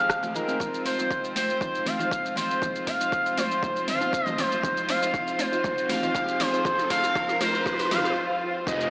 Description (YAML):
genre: afro house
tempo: 119 BPM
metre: 4/4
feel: straight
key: F minor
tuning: A4 = 442 Hz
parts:
  - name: expressive synth lead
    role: melody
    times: 0.0-8.9 s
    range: Bb4 to F5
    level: -26 LUFS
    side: equal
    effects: lush chorus, analog delay
  - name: warm chamber string section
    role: sustained chords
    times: 0.0-8.9 s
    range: F3 to C5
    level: -33 LUFS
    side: equal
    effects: sidechain pumping, low-pass filter
  - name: buzzing kalimba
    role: arpeggios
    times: 0.0-8.7 s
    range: F3 to C4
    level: -37 LUFS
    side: equal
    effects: sidechain pumping
  - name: deep house drum kit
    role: drums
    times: 0.1-8.9 s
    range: hi-hat, rim click, shaker, toms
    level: -32 LUFS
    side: equal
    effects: overdrive, small room ambience
  - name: electronic kick drum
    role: drums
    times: 0.1-8.8 s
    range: none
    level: -34 LUFS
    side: equal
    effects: overdrive, small room ambience
  - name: congas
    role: percussion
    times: 0.2-7.8 s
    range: none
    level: -38 LUFS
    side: equal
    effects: none
  - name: deep mellow chord stab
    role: stabs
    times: 0.3-8.9 s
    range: Ab3 to Eb5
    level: -34 LUFS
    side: equal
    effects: chorus, cassette tape, sidechain pumping, analog delay
  - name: riser, swell and downlifter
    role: sound effects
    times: 4.3-8.9 s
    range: none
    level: -33 LUFS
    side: equal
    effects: none
  - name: smooth synth bass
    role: bass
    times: 8.7-8.9 s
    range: F1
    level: -33 LUFS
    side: equal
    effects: sidechain pumping
room: wet lush hall reverb, RT60 2.7 s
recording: dry, gritty hardware recording, transformer saturation, AM radio sound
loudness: -23 LUFS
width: side -26 dB against mid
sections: 0.0-8.7 A section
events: build-up 0.0-8.7; drum fill 0.6-8.2; riser 4.3-8.2; swell 7.7-8.7; break 8.2-8.7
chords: 0.0 Fm7